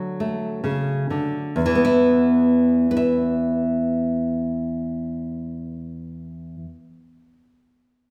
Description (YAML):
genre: folk, solo fingerstyle acoustic guitar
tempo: 67 BPM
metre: 4/4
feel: rubato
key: unclear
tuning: A4 = 441 Hz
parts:
  - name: nylon-string guitar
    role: solo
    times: 0.0-6.7 s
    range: E2 to E5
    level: -22 LUFS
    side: equal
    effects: none
room: wet recital hall reverb, RT60 1.4 s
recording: recorded in a church or concert hall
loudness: -21 LUFS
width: mono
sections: 0.0-1.5 A section; 1.5-5.2 B section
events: slowing down 0.0-1.5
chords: 0.0 D; 1.5 E5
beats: 0.64 | 1.55 2.46 3.35 4.25